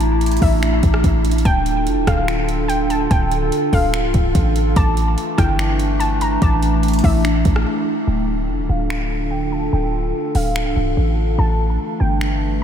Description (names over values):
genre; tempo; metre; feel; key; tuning
hip hop, atmospheric cloud-rap; 145 BPM; 4/4; half-time; D minor; A4 = 440 Hz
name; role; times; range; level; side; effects
warbly dusty pluck; melody; 0.0-12.2 s; E5 to Bb5; -25 LUFS; equal; chorus, low-pass filter, tape echo
warbly tape-like pad; sustained chords; 0.0-12.6 s; D3 to A4; -22 LUFS; right 1 dB; chorus, built-in reverb, low-pass filter
muted felt-like synth keys; arpeggios; 0.0-8.1 s; D4 to D6; -29 LUFS; left 3 dB; chorus, low-pass filter, tape echo
warm 808-style bass; bass; 0.0-12.6 s; C1 to A1; -19 LUFS; equal; none
smooth R&B drum kit; drums; 0.0-12.3 s; finger snaps, hi-hat, kick drum, rim click; -22 LUFS; equal; none
room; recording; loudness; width
moderate huge ambient reverb, RT60 7.8 s; dreamy mix soaked in reverb; -15 LUFS; side -9 dB against mid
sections
0.0-8.1 A section; 8.1-12.6 B section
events
break 7.7-8.1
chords
0.0 Asus4; 1.5 Dm; 4.8 Asus4; 8.1 Dm; 11.4 Asus4